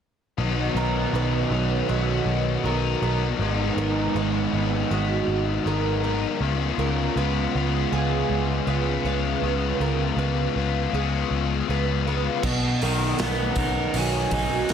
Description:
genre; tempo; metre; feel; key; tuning
rock, shoegaze and dream pop; 80 BPM; 4/4; straight; B lydian; A4 = 438 Hz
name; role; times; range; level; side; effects
biting overdriven guitar; riff; 0.4-14.7 s; G#2 to A#4; -26 LUFS; left 10 dB; lush chorus
raw garage guitar; riff; 0.4-14.7 s; G#2 to E#4; -29 LUFS; right 8 dB; overdrive, reverse reverb
vintage muted picked electric bass; bass; 0.4-14.7 s; G#1 to C#2; -26 LUFS; equal; none
picked twelve-string acoustic guitar; arpeggios; 0.8-14.7 s; F#4 to B4; -31 LUFS; right 10 dB; ensemble chorus, analog delay
raw garage drum kit; drums; 12.4-14.7 s; crash cymbal, hi-hat, kick drum, snare drum; -28 LUFS; right 1 dB; none
mellow silver concert flute; melody; 13.2-14.7 s; F#5 to G#5; -30 LUFS; left 1 dB; analog delay
room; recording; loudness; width
light reverb, studio reverb; none; -21 LUFS; side -8 dB against mid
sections
0.4-12.4 A section; 12.4-14.7 B section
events
none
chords
0.4 Bmaj7; 3.4 G#m9; 6.4 C#7; 12.4 Bmaj7

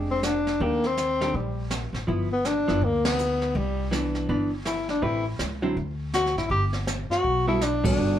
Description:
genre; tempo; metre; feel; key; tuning
jazz, small-group swing and bop; 162 BPM; 4/4; swing 64% on 8ths; G major; A4 = 440 Hz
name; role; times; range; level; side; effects
vintage hollow-body jazz guitar; accompaniment; 0.0-8.2 s; D3 to B4; -27 LUFS; right 1 dB; none
upright bass; bass; 0.0-8.2 s; F1 to Eb2; -30 LUFS; equal; none
breathy tenor saxophone; melody; 0.1-8.2 s; G3 to G4; -25 LUFS; left 2 dB; none
jazz brush drum kit; drums; 0.2-8.2 s; brushed snare drum, hi-hat, kick drum, ride cymbal, snare drum; -32 LUFS; right 1 dB; none
room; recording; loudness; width
wet club reverb, RT60 0.6 s; heard from further back in the room; -23 LUFS; side -10 dB against mid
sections
0.0-8.2 A section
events
band accent 3.0, 7.8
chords
0.0 Bb6 (rootless); 0.6 Ebmaj7#11; 2.1 G6; 3.6 Cmaj9; 5.0 Am9; 5.8 D5; 6.5 Gmaj9

